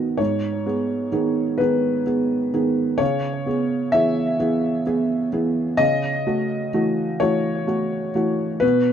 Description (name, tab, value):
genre	neoclassical minimalist piano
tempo	43 BPM (dotted quarters)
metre	6/8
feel	rubato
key	unclear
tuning	A4 = 441 Hz
part	felt-muted upright piano	solo	0.0-8.9 s	G#2 to E5	-19 LUFS	equal	tape echo
room	moderate studio reverb, RT60 0.7 s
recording	band playing live in one room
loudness	-19 LUFS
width	side -8 dB against mid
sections	0.0-8.9 A section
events	none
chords	0.2 G#m; 3.0 C#m7; 5.8 F#m7/C#